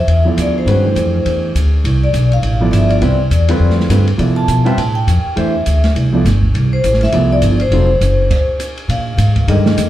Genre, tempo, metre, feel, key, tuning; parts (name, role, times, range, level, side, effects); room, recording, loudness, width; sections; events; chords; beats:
modal jazz; 204 BPM; 4/4; swing 59% on 8ths; G mixolydian; A4 = 439 Hz
vibraphone with medium mallets; melody; 0.0-9.9 s; C5 to A5; -18 LUFS; left 2 dB; plate reverb
upright bass; bass; 0.0-9.9 s; F1 to C3; -13 LUFS; equal
open jazz drum kit; drums; 0.1-9.9 s; crash cymbal, hi-hat, kick drum, ride cymbal, snare drum; -22 LUFS; right 1 dB
warm concert grand piano; accompaniment; 0.2-9.9 s; D3 to E5; -17 LUFS; right 2 dB
wet club reverb, RT60 0.6 s; heard from further back in the room; -11 LUFS; side -13 dB against mid
0.0-8.9 A section; 8.9-9.9 B section
stop 8.3-8.9
0.0 G9sus4; 4.2 Am7; 7.7 F7b9; 8.9 Bb7sus4
0.08 0.37 | 0.67 0.96 1.26 1.55 | 1.84 2.14 2.43 2.73 | 3.02 3.31 3.61 3.90 | 4.19 4.49 4.78 5.08 | 5.37 5.66 5.96 6.25 | 6.54 6.84 7.13 7.42 | 7.72 8.01 8.30 8.60 | 8.89 9.18 9.47 9.77